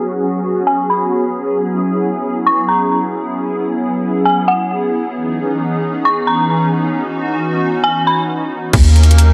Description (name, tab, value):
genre	hip hop, atmospheric cloud-rap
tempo	134 BPM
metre	4/4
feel	half-time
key	unclear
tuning	A4 = 438 Hz
part	hollow soft pad	sustained chords	0.0-9.3 s	E3 to A#4	-19 LUFS	equal	ensemble chorus, sidechain pumping, low-pass filter
part	dark detuned synth bell	melody	0.7-8.3 s	F#5 to C#6	-18 LUFS	equal	chorus, tremolo, low-pass filter, delay
part	long sustained 808-style bass	bass	8.7-9.3 s	D#2	-9 LUFS	equal	none
part	trap drum kit	drums	8.7-9.3 s	crash cymbal, hi-hat, kick drum	-16 LUFS	equal	none
room	moderate lush hall reverb, RT60 1.9 s, digital ambience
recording	none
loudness	-16 LUFS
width	mono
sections	0.0-8.7 A section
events	filter sweep 0.0-8.7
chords	0.0 F#9sus4; 5.2 C#m9; 8.7 D#m7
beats	0.23 0.67 1.12 | 1.57 2.02 2.46 2.91 | 3.36 3.81 4.26 4.70 | 5.15 5.60 6.05 6.50 | 6.94 7.39 7.84 8.29 | 8.73 9.18